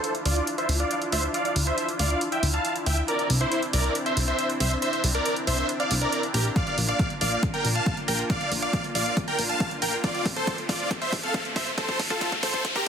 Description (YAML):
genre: uplifting trance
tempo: 138 BPM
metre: 4/4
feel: straight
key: D minor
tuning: A4 = 439 Hz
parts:
  - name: big supersaw lead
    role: melody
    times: 0.0-12.9 s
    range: E4 to A5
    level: -26 LUFS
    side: equal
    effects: sidechain pumping, low-pass filter, dub echo
  - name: filtered supersaw swell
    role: sustained chords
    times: 0.0-12.9 s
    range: A3 to F4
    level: -32 LUFS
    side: equal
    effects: sidechain pumping
  - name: electronic hi-hat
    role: drums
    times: 0.0-12.8 s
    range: none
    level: -31 LUFS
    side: right 2 dB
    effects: overdrive, sidechain pumping on hats, studio reverb
  - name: plucky analog bass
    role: bass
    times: 0.3-12.6 s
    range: A1 to D2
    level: -27 LUFS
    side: equal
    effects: sidechain pumping
  - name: electronic kick drum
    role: drums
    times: 6.6-12.8 s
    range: none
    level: -29 LUFS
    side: equal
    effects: overdrive, studio reverb
  - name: riser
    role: sound effects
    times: 8.6-12.9 s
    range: none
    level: -35 LUFS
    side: left 1 dB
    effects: none
room: light reverb, digital ambience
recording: dense, heavily limited modern master, high-pass filter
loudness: -23 LUFS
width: side -7 dB against mid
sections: 0.0-12.9 A section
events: build-up 0.0-12.9; filter sweep on supersaw synth 0.0-12.9; filter sweep 0.0-12.9; drum fill 6.6-12.9; riser 8.6-12.9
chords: 0.0 Dmadd9; 3.1 Cadd9; 6.6 Bb; 10.0 F/A